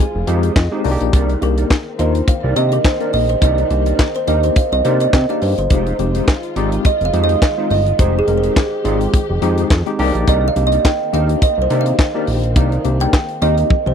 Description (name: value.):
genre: early-eighties boogie funk.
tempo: 105 BPM.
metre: 4/4.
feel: swing 56% on 16ths.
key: unclear.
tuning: A4 = 438 Hz.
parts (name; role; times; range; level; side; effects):
barky tine electric piano; accompaniment; 0.0-13.7 s; Ab3 to Ab5; -22 LUFS; left 4 dB; medium stereo tremolo.
dark studio string section; sustained chords; 0.0-13.9 s; Eb3 to G4; -30 LUFS; left 1 dB; none.
mellow electric guitar; riff; 0.0-13.9 s; Eb4 to Eb5; -26 LUFS; right 3 dB; ensemble chorus.
fat analog bass; bass; 0.1-13.9 s; F1 to C3; -17 LUFS; equal; none.
tight funk drum kit; drums; 0.3-13.9 s; handclaps, hi-hat, kick drum, snare drum, toms; -16 LUFS; equal; none.
kalimba; melody; 1.4-13.9 s; Ab4 to G5; -19 LUFS; right 2 dB; slapback echo.
room: little or no reverb.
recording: dry, close 1970s-style studio recording.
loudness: -13 LUFS.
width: side -8 dB against mid.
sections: 0.0-13.9 A section.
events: tine electric piano fill 0.0-1.1; kalimba solo 0.0-13.9; drum fill 13.7.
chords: 0.0 Fm7; 0.8 Cm9; 5.7 Fm7; 10.0 Cm9.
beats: 0.56 | 1.13 1.70 2.28 2.85 | 3.42 3.99 4.56 5.13 | 5.70 6.28 6.85 7.42 | 7.99 8.56 9.13 9.70 | 10.28 10.85 11.42 11.99 | 12.56 13.13 13.70.